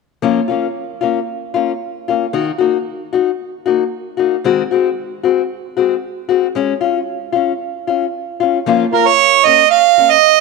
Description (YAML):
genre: highlife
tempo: 114 BPM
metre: 4/4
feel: swing 54% on 16ths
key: Bb minor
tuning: A4 = 436 Hz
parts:
  - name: fingerpicked steel-string acoustic guitar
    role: accompaniment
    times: 0.2-10.2 s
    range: Eb3 to Gb4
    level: -16 LUFS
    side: left 8 dB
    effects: none
  - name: warm harmonica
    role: melody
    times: 8.9-10.4 s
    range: Bb4 to F5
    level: -8 LUFS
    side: right 16 dB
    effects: slapback echo
room: moderate plate reverb, RT60 2.5 s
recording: 1960s-style stereo with parts hard left and right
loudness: -13 LUFS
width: side -3 dB against mid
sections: 0.2-8.7 A section; 8.7-10.4 B section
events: none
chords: 0.2 Bbm; 2.3 Ebm; 4.4 Ab7; 6.6 Db; 8.7 Bbm